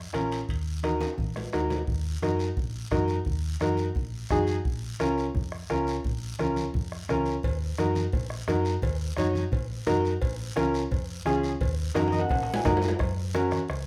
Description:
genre	latin, cumbia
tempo	173 BPM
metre	4/4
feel	straight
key	Eb minor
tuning	A4 = 436 Hz
part	hollow-body short-scale fingered electric bass	bass	0.0-13.9 s	Bb1 to Gb2	-34 LUFS	equal	none
part	clear upright piano	accompaniment	0.1-13.6 s	Db4 to Bb5	-30 LUFS	equal	none
part	bombo	percussion	0.1-13.9 s	none	-34 LUFS	equal	none
part	congas	percussion	0.1-13.9 s	none	-39 LUFS	equal	none
part	guiro	percussion	0.1-13.9 s	none	-46 LUFS	equal	none
part	timbales and cowbell	percussion	0.1-1.8, 7.4-13.9 s	none	-39 LUFS	equal	none
room	moderate large studio reverb, RT60 0.8 s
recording	none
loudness	-28 LUFS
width	mono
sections	0.0-1.9 A section; 1.9-13.0 A section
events	drum fill 1.0-1.9, 12.0-13.0; upright piano fill 12.0-13.0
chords	0.5 Ebm; 4.7 Bbm; 7.4 Ebm; 10.2 Bbm; 11.6 Ebm; 13.0 Gb

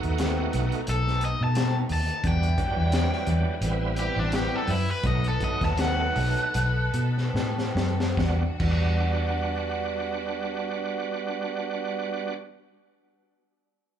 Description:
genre	straight-eighth soul blues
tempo	70-88 BPM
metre	4/4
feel	swing 56% on 16ths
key	E minor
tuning	A4 = 440 Hz
part	bright tonewheel organ	accompaniment	0.0-12.3 s	F#3 to F#4	-30 LUFS	right 6 dB	slow rotary speaker, overdrive, chorus vibrato, plate reverb, slapback echo
part	rich studio string section	sustained chords	0.0-11.9 s	E3 to B4	-36 LUFS	left 1 dB	plate reverb
part	vintage muted fingered electric bass	bass	0.0-12.4 s	A1 to B2	-26 LUFS	equal	none
part	crunchy breakbeat drum kit	drums	0.0-8.9 s	crash cymbal, hi-hat, kick drum, snare drum	-30 LUFS	left 2 dB	none
part	overdriven electric guitar	melody	0.9-8.1 s	D4 to A5	-29 LUFS	left 1 dB	plate reverb, slapback echo
room	light reverb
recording	live gig heard through the venue's PA, club reverb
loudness	-24 LUFS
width	side -9 dB against mid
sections	0.0-8.2 A section; 8.2-11.6 B section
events	overdriven electric guitar solo 0.0-8.2; slowing down 2.2-8.2; drum fill 7.3-8.2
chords	0.0 B7; 2.2 Em9; 3.6 Am9; 5.0 B7; 8.2 Em9

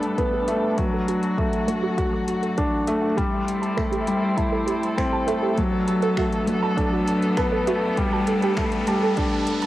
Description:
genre	piano and strings electronica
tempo	100 BPM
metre	4/4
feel	straight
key	A dorian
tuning	A4 = 440 Hz
part	muted string quartet	sustained chords	0.0-9.7 s	F#3 to A4	-28 LUFS	equal	sidechain pumping, cassette tape, shimmer reverb
part	felt-muted upright piano	riff	0.0-9.7 s	F#3 to F#4	-23 LUFS	left 1 dB	cassette tape, analog delay, shimmer reverb
part	deep house drum kit	drums	0.0-9.7 s	finger snaps, hi-hat	-37 LUFS	equal	overdrive, small room ambience
part	warbly dusty pluck	arpeggios	0.2-9.7 s	F#4 to D6	-29 LUFS	right 5 dB	chorus, vintage 12-bit sampler grit, sidechain pumping, cassette tape, analog delay, shimmer reverb
part	electronic kick drum	drums	0.2-9.3 s	none	-28 LUFS	equal	overdrive, small room ambience
part	riser	sound effects	5.5-9.7 s	none	-37 LUFS	equal	none
room	wet studio reverb, RT60 0.6 s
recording	home recording on cassette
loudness	-20 LUFS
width	side -15 dB against mid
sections	0.0-9.7 A section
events	build-up 0.0-9.7; filter sweep on synth arpeggio sound 0.0-9.7; riser 5.5-9.7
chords	0.0 Gadd9; 0.8 D; 3.2 Am7; 5.6 Bm7; 8.0 Gadd9

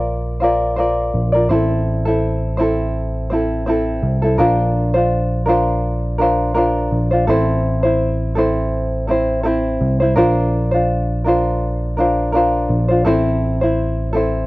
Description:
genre	acoustic pop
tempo	83 BPM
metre	4/4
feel	swing 55% on 16ths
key	unclear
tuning	A4 = 440 Hz
part	tenor ukulele	accompaniment	0.0-14.5 s	C4 to D5	-17 LUFS	equal	cassette tape
part	bell-like tine electric piano	bass	0.0-14.5 s	A1 to C2	-20 LUFS	equal	none
room	small room ambience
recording	home recording on cassette, nothing above 10.8 kHz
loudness	-15 LUFS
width	side -20 dB against mid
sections	0.0-4.4 A section; 4.4-14.5 A section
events	none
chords	0.0 Bbadd9; 1.5 Am; 4.4 Bbadd9; 7.3 Am; 10.2 Bbadd9; 13.1 Am

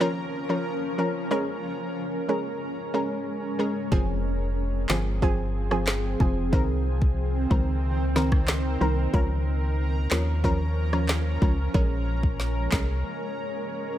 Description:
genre	dancehall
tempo	92 BPM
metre	4/4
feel	straight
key	unclear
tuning	A4 = 440 Hz
part	analog pluck	accompaniment	0.0-13.0 s	Eb3 to Bb4	-28 LUFS	equal	chorus
part	granular cloud pad	sustained chords	0.0-14.0 s	Eb3 to Bb4	-30 LUFS	equal	built-in reverb, sidechain pumping
part	organ-like FM bass	bass	3.9-13.0 s	F1 to Eb2	-26 LUFS	equal	none
part	afro-pop drum kit	drums	3.9-12.9 s	handclaps, kick drum, rim click, snare drum	-25 LUFS	equal	none
room	little or no reverb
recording	none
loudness	-23 LUFS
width	side -12 dB against mid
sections	0.0-14.0 A section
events	break 13.0-14.0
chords	0.0 Db6; 1.3 Bbm7; 3.9 Fm; 6.5 Cm7; 9.1 Db6; 11.7 Bbm7

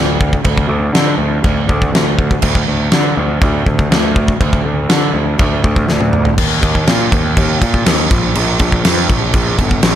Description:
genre	heavy metal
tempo	121 BPM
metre	4/4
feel	straight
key	unclear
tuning	A4 = 439 Hz
part	fuzz picked electric bass	bass	0.0-10.0 s	G1 to D3	-15 LUFS	equal	overdrive
part	big rock drum kit	drums	0.2-9.9 s	china cymbal, crash cymbal, kick drum, snare drum, toms	-13 LUFS	equal	none
room	little or no reverb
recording	none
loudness	-11 LUFS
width	side -10 dB against mid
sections	0.0-6.4 A section; 6.4-10.0 B section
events	drum fill 5.9-6.4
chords	none

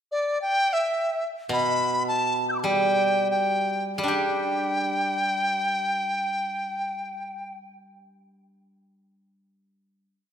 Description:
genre	chinese traditional, Chinese chamber ensemble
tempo	73-111 BPM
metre	2/4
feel	rubato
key	G gong mode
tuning	A4 = 440 Hz
part	bright dizi	melody	0.1-7.6 s	D5 to G6	-24 LUFS	equal	none
part	steel-string zither	accompaniment	1.5-10.0 s	B2 to G4	-27 LUFS	right 1 dB	none
room	moderate scoring stage reverb, RT60 1.9 s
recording	minimal, uncompressed stereo recording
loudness	-23 LUFS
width	side -8 dB against mid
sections	0.0-4.1 A section; 4.1-7.2 final chord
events	slowing down 1.5-4.1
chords	none

